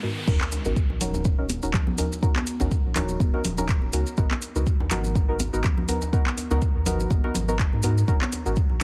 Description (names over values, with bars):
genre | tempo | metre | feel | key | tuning
afro house | 123 BPM | 4/4 | swing 55% on 16ths | Eb minor | A4 = 441 Hz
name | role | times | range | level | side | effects
deep mellow chord stab | stabs | 0.0-8.8 s | Ab2 to Bb4 | -33 LUFS | equal | chorus, sidechain pumping, digital delay
riser and sub drop | sound effects | 0.0-2.2 s | none | -37 LUFS | equal | none
warm sub bass | bass | 0.3-8.8 s | Eb1 to Ab2 | -30 LUFS | equal | tube saturation, sidechain pumping
afro-pop drum kit | drums | 0.3-8.4 s | crash cymbal, handclaps, hi-hat | -34 LUFS | equal | none
electronic kick drum | drums | 0.3-8.7 s | none | -25 LUFS | equal | none
djembe | percussion | 0.3-8.8 s | none | -36 LUFS | equal | none
maracas | percussion | 0.3-8.8 s | none | -39 LUFS | equal | none
congas | percussion | 0.4-8.8 s | none | -35 LUFS | equal | none
room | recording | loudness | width
little or no reverb | heavily compressed radio sound, multiband compression | -24 LUFS | mono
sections
0.3-8.8 A section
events
riser 0.0; drop 0.3-8.8; impact 0.3-2.2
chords
0.3 Ebm7; 4.2 Abm7; 8.1 Ebm7